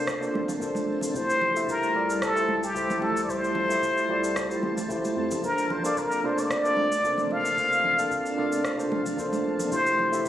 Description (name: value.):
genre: sunset chillout.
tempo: 112 BPM.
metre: 4/4.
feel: swing 53% on 16ths.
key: F major.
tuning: A4 = 441 Hz.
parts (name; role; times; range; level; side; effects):
trumpet with plunger mute; melody; 0.0-10.3 s; G4 to F5; -26 LUFS; left 1 dB; tape echo.
barky tine electric piano; accompaniment; 0.0-10.3 s; A3 to F5; -29 LUFS; equal; auto-pan, ping-pong delay.
soft string machine; sustained chords; 0.0-10.3 s; C3 to A5; -35 LUFS; equal; phaser, ensemble chorus, vintage 12-bit sampler grit.
round analog bass; bass; 0.0-10.3 s; F1 to F2; -39 LUFS; equal; none.
electronic kick drum; drums; 0.1-10.3 s; none; -47 LUFS; right 1 dB; none.
electronic rim click and shaker; drums; 0.1-10.3 s; none; -35 LUFS; equal; none.
congas; percussion; 0.4-10.1 s; none; -36 LUFS; right 3 dB; none.
room: moderate plate reverb, RT60 2.8 s.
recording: recorded on a phone in the room, studio reverb, compression.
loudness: -23 LUFS.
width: side -11 dB against mid.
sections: 0.0-10.3 A section.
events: none.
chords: 0.0 Bbmaj9; 1.1 Fmaj9; 5.4 Bbmaj9; 9.7 Fmaj9.